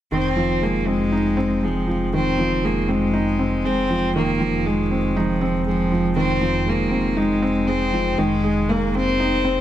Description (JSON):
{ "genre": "piano and strings electronica", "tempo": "119 BPM", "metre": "4/4", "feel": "straight", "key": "F minor", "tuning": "A4 = 439 Hz", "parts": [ { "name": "rich cello", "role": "melody", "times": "0.1-9.6 s", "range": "F3 to C4", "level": "-22 LUFS", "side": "left 1 dB", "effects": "none" }, { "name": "felt-muted upright piano", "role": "riff", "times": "0.1-9.6 s", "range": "Eb3 to Eb4", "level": "-22 LUFS", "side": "right 1 dB", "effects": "none" }, { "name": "dark detuned saw bass", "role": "bass", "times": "0.1-9.6 s", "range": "F1", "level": "-27 LUFS", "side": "equal", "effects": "tube saturation" } ], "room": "moderate lush hall reverb, RT60 1.9 s", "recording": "none", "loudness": "-18 LUFS", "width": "side -12 dB against mid", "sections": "0.1-9.6 A section", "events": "none", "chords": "0.1 Fm7; 8.2 Abadd9/F" }